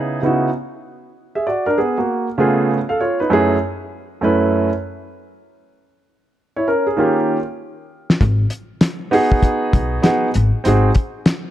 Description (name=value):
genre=hip hop, jazz-hop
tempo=98 BPM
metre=4/4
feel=swing 64% on 16ths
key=C# minor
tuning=A4 = 440 Hz
part: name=warm concert grand piano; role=accompaniment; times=0.0-10.9 s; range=F#2 to E#5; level=-16 LUFS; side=right 2 dB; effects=none
part: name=cloth-damped thuddy drum kit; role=drums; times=8.1-11.4 s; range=hi-hat, kick drum, snare drum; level=-16 LUFS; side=left 1 dB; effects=none
part: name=upright bass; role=bass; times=8.2-10.9 s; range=G#1 to B1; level=-16 LUFS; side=left 1 dB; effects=none
room=light reverb, small room ambience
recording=none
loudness=-15 LUFS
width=side -12 dB against mid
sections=0.0-11.5 A section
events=drum fill 7.0-8.2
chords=0.0 C#m9; 0.9 N.C.; 2.1 C#7b13; 3.3 F#m7; 5.8 N.C.; 7.0 D#7; 8.2 G#m7; 10.7 G#7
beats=0.24 | 0.86 1.47 2.08 2.69 | 3.31 3.92 4.53 5.14 | 5.75 6.37 6.98 7.59 | 8.20 8.81 9.43 10.04 | 10.65 11.26